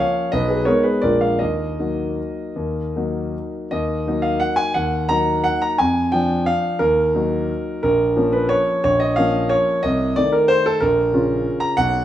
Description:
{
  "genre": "classical, piano waltz",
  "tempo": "152-195 BPM",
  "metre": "3/4",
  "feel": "rubato",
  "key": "Eb minor",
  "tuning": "A4 = 440 Hz",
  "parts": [
    { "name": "warm concert grand piano", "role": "solo", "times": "0.0-12.0 s", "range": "Bb1 to Bb5", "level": "-17 LUFS", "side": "equal", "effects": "none" }
  ],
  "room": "wet large studio reverb, RT60 1.1 s",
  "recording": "heard from further back in the room",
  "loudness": "-17 LUFS",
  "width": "side -12 dB against mid",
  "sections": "0.0-3.7 A section; 3.7-12.0 B section",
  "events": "none",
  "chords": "0.3 Abm/Cb; 1.0 Bb7; 1.4 Ebm; 5.8 Ddim/F; 6.8 Ebm; 7.8 Bbm; 9.8 Adim/C; 10.8 Bbm"
}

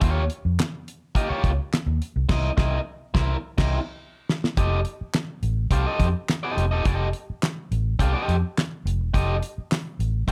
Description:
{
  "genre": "funk",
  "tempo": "105 BPM",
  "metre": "4/4",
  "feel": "straight",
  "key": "F mixolydian",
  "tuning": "A4 = 441 Hz",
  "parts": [
    { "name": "biting overdriven guitar", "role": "accompaniment", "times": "0.0-10.3 s", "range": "Bb3 to F5", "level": "-30 LUFS", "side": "equal", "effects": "none" },
    { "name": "vintage muted fingered electric bass", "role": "bass", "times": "0.0-10.3 s", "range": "E1 to F2", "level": "-26 LUFS", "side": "equal", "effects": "none" },
    { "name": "damped 70s drum kit", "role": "drums", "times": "0.0-10.3 s", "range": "crash cymbal, handclaps, hi-hat, kick drum, snare drum", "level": "-27 LUFS", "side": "equal", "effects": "none" }
  ],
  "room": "light reverb",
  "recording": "none",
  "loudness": "-25 LUFS",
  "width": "mono",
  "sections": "0.0-4.6 A section; 4.6-10.3 B section",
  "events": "band accent 2.3-4.6; drum fill 3.4-4.6",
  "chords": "0.0 Eb9; 2.3 C7#9; 4.6 F9"
}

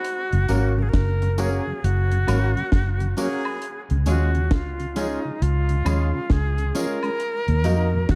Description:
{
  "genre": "roots reggae",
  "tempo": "67 BPM",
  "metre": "4/4",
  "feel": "swing 63% on 16ths",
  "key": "Db major",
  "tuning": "A4 = 440 Hz",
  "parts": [
    { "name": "concert flute", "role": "melody", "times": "0.0-8.2 s", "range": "Eb4 to Bb4", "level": "-30 LUFS", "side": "equal", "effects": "dub echo" },
    { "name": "deep reggae drum kit", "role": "drums", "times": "0.0-8.2 s", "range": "hi-hat, kick drum, snare drum", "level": "-25 LUFS", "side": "equal", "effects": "none" },
    { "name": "mellow tonewheel organ", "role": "accompaniment", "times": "0.3-8.0 s", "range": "Eb2 to Eb4", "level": "-35 LUFS", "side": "equal", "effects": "chorus vibrato, slow rotary speaker, dub echo" },
    { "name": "vintage muted fingered electric bass", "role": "bass", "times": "0.3-8.2 s", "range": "Gb1 to F2", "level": "-23 LUFS", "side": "equal", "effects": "none" },
    { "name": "twangy electric guitar", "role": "accompaniment", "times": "0.5-7.9 s", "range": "Ab3 to Bb4", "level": "-38 LUFS", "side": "equal", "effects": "dub echo" },
    { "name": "dark grand piano", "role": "stabs", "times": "0.5-7.9 s", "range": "Db4 to Eb5", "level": "-33 LUFS", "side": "equal", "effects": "none" },
    { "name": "tambourine and woodblock", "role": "percussion", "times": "0.5-7.9 s", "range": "none", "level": "-39 LUFS", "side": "equal", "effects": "none" }
  ],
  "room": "light reverb, studio reverb",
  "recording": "dark, warm production",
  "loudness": "-22 LUFS",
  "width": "mono",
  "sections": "0.0-8.2 A section",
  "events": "none",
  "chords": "0.0 Gb; 3.6 Db; 7.2 Ebm"
}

